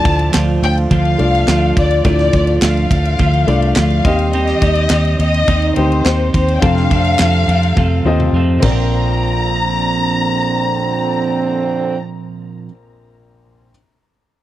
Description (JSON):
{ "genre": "piano-driven pop", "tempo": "105 BPM", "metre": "4/4", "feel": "straight", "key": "Bb major", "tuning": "A4 = 440 Hz", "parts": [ { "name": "dark studio violin section", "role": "melody", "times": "0.0-12.0 s", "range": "C5 to Bb5", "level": "-19 LUFS", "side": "left 3 dB", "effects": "none" }, { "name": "dark French horn section", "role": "second line", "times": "0.0-12.0 s", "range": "F2 to G4", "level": "-22 LUFS", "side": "right 3 dB", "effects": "none" }, { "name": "dark upright piano", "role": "accompaniment", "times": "0.0-13.7 s", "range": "Bb1 to F5", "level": "-21 LUFS", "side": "left 3 dB", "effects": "none" }, { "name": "twelve-string electric guitar", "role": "riff", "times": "0.0-12.8 s", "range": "F2 to A4", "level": "-21 LUFS", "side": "right 4 dB", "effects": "none" }, { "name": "vintage muted fingered electric bass", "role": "bass", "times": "0.1-12.7 s", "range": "Bb1 to F2", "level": "-16 LUFS", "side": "equal", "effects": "none" }, { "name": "modern studio drum kit", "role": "drums", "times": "0.1-8.8 s", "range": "crash cymbal, handclaps, kick drum, ride cymbal, snare drum, toms", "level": "-18 LUFS", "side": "equal", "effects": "none" } ], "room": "small room ambience", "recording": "dry, close 1970s-style studio recording", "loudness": "-12 LUFS", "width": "side -13 dB against mid", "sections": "0.0-8.9 A section; 8.9-11.2 B section", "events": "drum fill 7.8-8.9", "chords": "0.0 Dm; 4.1 Cm/Eb; 6.6 F; 8.6 Bbadd9", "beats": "0.34 0.91 1.48 | 2.05 2.62 3.20 3.77 | 4.34 4.91 5.49 6.06 | 6.63 7.20 7.77 8.34 | 8.91 9.48 10.06 10.63" }